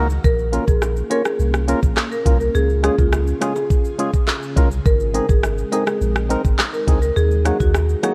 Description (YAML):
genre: dancehall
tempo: 104 BPM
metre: 4/4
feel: straight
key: Bb minor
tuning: A4 = 440 Hz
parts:
  - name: percussive organ stab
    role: accompaniment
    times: 0.0-8.1 s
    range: Gb3 to Db5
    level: -26 LUFS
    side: equal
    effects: chorus, sidechain pumping
  - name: ethereal airy pad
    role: sustained chords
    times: 0.1-8.1 s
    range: Db3 to Bb4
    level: -33 LUFS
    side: equal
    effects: ensemble chorus, built-in reverb, sidechain pumping
  - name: punchy sub bass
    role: bass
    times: 0.0-7.9 s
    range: Ab1 to Eb2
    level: -22 LUFS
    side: equal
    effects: none
  - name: island pop drum kit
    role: drums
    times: 0.1-8.1 s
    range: handclaps, hi-hat, kick drum, rim click, shaker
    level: -21 LUFS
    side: equal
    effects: none
  - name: marimba with medium mallets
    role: melody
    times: 0.2-8.1 s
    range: F4 to Bb4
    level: -25 LUFS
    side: equal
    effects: none
  - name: bongos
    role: percussion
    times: 0.5-8.1 s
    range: none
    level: -35 LUFS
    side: equal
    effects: none
room: little or no reverb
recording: worn, warbling old tape, cassette tape, warbly pitch drift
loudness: -18 LUFS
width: mono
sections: 0.0-8.1 A section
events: break 0.0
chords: 0.2 Bbm; 2.6 Db; 4.9 Ab; 7.2 Ebm